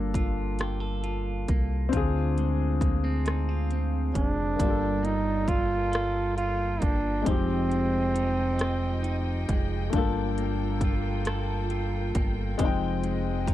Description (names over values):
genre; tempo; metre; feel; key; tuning
slow six-eight R&B; 45 BPM (dotted quarters); 6/8; straight; unclear; A4 = 440 Hz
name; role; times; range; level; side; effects
electric guitar at the edge of break-up; second line; 0.0-13.5 s; D3 to A4; -34 LUFS; right 5 dB; none
warm grand piano; accompaniment; 0.0-13.5 s; Ab3 to G5; -32 LUFS; left 9 dB; none
deep dub fingered electric bass; bass; 0.0-13.5 s; F1 to D2; -29 LUFS; equal; none
pop drum kit; drums; 0.1-13.5 s; hi-hat, kick drum, rim click; -28 LUFS; equal; none
warm flugelhorn; melody; 4.1-9.4 s; C4 to F4; -28 LUFS; right 2 dB; slapback echo
rich studio string section; sustained chords; 4.6-13.5 s; Ab3 to G5; -39 LUFS; equal; none
room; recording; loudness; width
little or no reverb; dry, close 1970s-style studio recording; -24 LUFS; side -13 dB against mid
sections
0.0-13.5 A section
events
none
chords
0.0 Gm9; 1.9 Dm7b5; 4.6 Gm9; 7.3 Fm9; 9.9 Gm9; 12.6 Fm9